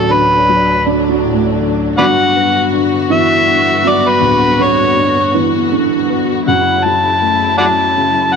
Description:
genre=acoustic folk-pop ballad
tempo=80 BPM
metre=3/4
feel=straight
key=D major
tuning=A4 = 440 Hz
part: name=overdriven harmonica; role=melody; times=0.0-8.4 s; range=A4 to A5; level=-13 LUFS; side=equal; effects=none
part: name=dark baby grand piano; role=accompaniment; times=0.0-8.4 s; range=D1 to D4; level=-18 LUFS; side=left 10 dB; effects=none
part: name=dark chamber string section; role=sustained chords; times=0.0-8.4 s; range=D2 to F#4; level=-18 LUFS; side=equal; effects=none
part: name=felt-muted upright piano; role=arpeggios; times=0.0-7.3 s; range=D3 to A3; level=-18 LUFS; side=right 9 dB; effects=none
room=wet echo chamber reverb, RT60 1.9 s, small room ambience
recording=1960s-style stereo with parts hard left and right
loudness=-10 LUFS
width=side -6 dB against mid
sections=0.0-8.4 A section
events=none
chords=0.0 D; 2.0 Gmaj7; 6.5 Dmaj7/F# (rootless)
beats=0.49 1.24 | 1.98 2.73 3.47 | 4.22 4.97 5.72 | 6.48 7.23 7.98

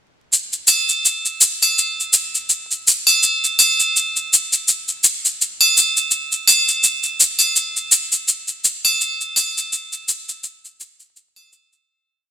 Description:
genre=trip hop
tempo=83 BPM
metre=4/4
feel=swing 56% on 16ths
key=none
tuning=none
part: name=egg shaker and triangle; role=percussion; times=0.3-11.9 s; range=none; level=-13 LUFS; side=equal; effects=none
room=moderate lush hall reverb, RT60 2.2 s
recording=dark, warm production, vinyl crackle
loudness=-13 LUFS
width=side -10 dB against mid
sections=0.3-11.9 groove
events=fade-out 8.0-11.9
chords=none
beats=| 0.32 1.04 1.77 2.49 | 3.21 3.94 4.66 5.38 | 6.11 6.83 7.55 8.27 | 9.00 9.72 10.44 11.16

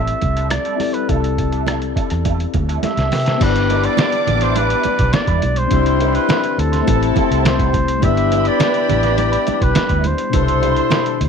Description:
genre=lush 1970s-style soul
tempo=104 BPM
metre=4/4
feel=straight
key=G major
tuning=A4 = 440 Hz
part: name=warm flugelhorn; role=melody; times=0.0-11.3 s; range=A4 to E5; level=-21 LUFS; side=right 1 dB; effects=tape echo
part: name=mellow tine electric piano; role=accompaniment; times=0.0-11.3 s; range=B2 to A5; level=-21 LUFS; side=left 14 dB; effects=medium stereo tremolo
part: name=electric guitar through a small old amp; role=riff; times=0.0-11.2 s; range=G3 to D5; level=-28 LUFS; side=right 12 dB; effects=wah
part: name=vintage muted fingered electric bass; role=bass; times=0.0-11.3 s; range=G1 to C3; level=-20 LUFS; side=right 1 dB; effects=none
part: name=lo-fi sampler-style drum kit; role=drums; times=0.1-11.3 s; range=crash cymbal, hi-hat, kick drum, rim click, snare drum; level=-21 LUFS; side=right 1 dB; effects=none
part: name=congas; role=percussion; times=0.2-11.0 s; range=none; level=-27 LUFS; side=right 16 dB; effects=none
part: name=muted studio string section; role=second line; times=3.4-11.2 s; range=C4 to D6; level=-25 LUFS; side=right 12 dB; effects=none
part: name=clear horn section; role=stabs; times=3.4-11.2 s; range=G3 to A4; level=-24 LUFS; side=left 12 dB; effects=none
room=light reverb, studio reverb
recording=1960s-style stereo with parts hard left and right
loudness=-14 LUFS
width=side -6 dB against mid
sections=0.0-3.4 A section; 3.4-11.3 B section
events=drum fill 2.8-3.4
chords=0.0 C69; 3.4 G6; 5.7 Cmaj9; 6.9 Am7; 8.0 G6; 10.3 Cmaj9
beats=0.51 | 1.09 1.67 2.25 2.83 | 3.40 3.98 4.56 5.14 | 5.71 6.29 6.87 7.45 | 8.02 8.60 9.18 9.76 | 10.34 10.91

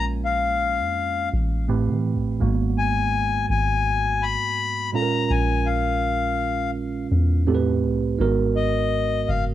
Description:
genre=contemporary R&B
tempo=83 BPM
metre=4/4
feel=straight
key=G# dorian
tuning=A4 = 439 Hz
part: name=accordion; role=melody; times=0.0-9.4 s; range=D#5 to B5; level=-24 LUFS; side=left 6 dB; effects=cassette tape
part: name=tine electric piano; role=accompaniment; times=0.0-9.5 s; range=G#2 to B4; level=-24 LUFS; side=right 4 dB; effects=phaser
part: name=soft 808-style bass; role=bass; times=0.0-9.5 s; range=F#1 to E3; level=-25 LUFS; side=equal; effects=none
room=light reverb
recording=home recording on cassette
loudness=-20 LUFS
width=side -12 dB against mid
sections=0.0-9.5 A section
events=none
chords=0.0 A#m7; 1.7 Am7; 2.4 G#m7; 4.9 A#m7; 7.5 Am7; 8.2 G#m7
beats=0.24 0.96 1.68 | 2.41 3.13 3.85 4.58 | 5.30 6.02 6.75 7.47 | 8.19 8.91

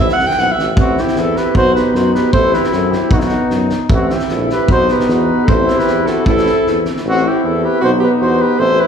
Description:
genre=balkan folk, Balkan brass band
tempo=153 BPM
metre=2/4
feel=straight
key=A dorian sharp4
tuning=A4 = 440 Hz
part: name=mellow alto saxophone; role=second line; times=0.0-8.9 s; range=C4 to G5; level=-19 LUFS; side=right 2 dB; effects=none
part: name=brilliant trombone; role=accompaniment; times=0.0-8.9 s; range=D#4 to E4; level=-22 LUFS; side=left 4 dB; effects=none
part: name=dark euphonium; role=accompaniment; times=0.0-8.9 s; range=B3 to C4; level=-19 LUFS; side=right 1 dB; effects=none
part: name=clear tuba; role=bass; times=0.0-8.8 s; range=A1 to F#2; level=-20 LUFS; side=left 1 dB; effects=none
part: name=loose indie drum kit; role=percussion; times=0.1-7.0 s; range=kick drum, snare drum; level=-18 LUFS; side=equal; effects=none
part: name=warm flugelhorn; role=melody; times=0.8-8.9 s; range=E4 to C5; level=-17 LUFS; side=equal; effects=none
room=wet recital hall reverb, RT60 1.9 s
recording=heard from further back in the room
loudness=-12 LUFS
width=side -7 dB against mid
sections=0.8-7.0 A section; 7.0-8.9 A section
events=none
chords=0.0 Am; 1.6 B; 2.3 Am; 3.1 B; 3.9 Am; 4.7 B; 5.5 Am; 7.8 B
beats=0.38 | 0.77 1.16 | 1.55 1.94 | 2.34 2.73 | 3.12 3.52 | 3.91 4.30 | 4.69 5.08 | 5.47 5.87 | 6.26 6.65 | 7.04 7.43 | 7.82 8.21 | 8.61

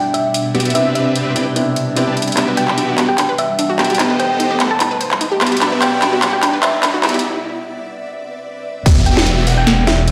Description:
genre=future bass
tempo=148 BPM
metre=4/4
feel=swing 53% on 16ths, half-time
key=E minor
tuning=A4 = 440 Hz
part: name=felt-muted upright piano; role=accompaniment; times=0.0-2.4 s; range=C3 to B4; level=-23 LUFS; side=equal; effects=sidechain pumping, dub echo
part: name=ethereal airy pad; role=sustained chords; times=0.0-10.1 s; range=B2 to F#5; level=-29 LUFS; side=equal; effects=ensemble chorus, built-in reverb, tremolo, sidechain pumping
part: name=thumb-piano-like synth pluck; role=melody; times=0.1-10.0 s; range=E5 to A5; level=-23 LUFS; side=equal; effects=chorus, sidechain pumping, dub echo
part: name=trap drum kit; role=drums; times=0.1-10.1 s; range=crash cymbal, handclaps, hi-hat, snare drum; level=-20 LUFS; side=equal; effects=studio reverb
part: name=dense compressed supersaw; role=riff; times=0.5-9.6 s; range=B3 to A5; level=-22 LUFS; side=equal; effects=sidechain pumping, low-pass filter
part: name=unison pluck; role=arpeggios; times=2.4-7.2 s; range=D4 to D5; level=-24 LUFS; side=equal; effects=sidechain pumping, dub echo
part: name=riser and downlifter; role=sound effects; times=5.0-10.1 s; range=none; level=-29 LUFS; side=equal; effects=none
part: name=airy dreamy lead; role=arpeggios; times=8.9-9.6 s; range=E5 to F#5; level=-31 LUFS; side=equal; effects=chorus, sidechain pumping
part: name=detuned saw bass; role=bass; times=8.9-10.1 s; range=E1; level=-17 LUFS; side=equal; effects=chorus, tube saturation, sidechain pumping
part: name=electronic kick drum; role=drums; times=8.9 s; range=none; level=-14 LUFS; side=equal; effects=studio reverb
room=wet digital room reverb, RT60 1.0 s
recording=played on a big sound system in a bare room, stone room reverb, high-pass filter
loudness=-15 LUFS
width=mono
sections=0.0-8.9 A section; 8.9-10.1 B section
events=build-up 0.0-8.9; filter sweep on synth pluck 0.0-8.9; drum fill 2.4-7.2; break 7.2-8.9; drop 8.9-10.1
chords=0.0 Em9/B; 0.8 Cmaj9; 2.4 Em9; 4.0 B7b9b13; 5.4 Em9/B; 7.2 Cmaj9; 8.9 Em9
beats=0.34 | 0.75 1.16 1.56 1.97 | 2.37 2.78 3.18 3.59 | 3.99 4.40 4.80 5.21 | 5.62 6.02 6.42 6.83 | 7.24 7.64 8.05 8.45 | 8.86 9.26 9.67 10.07

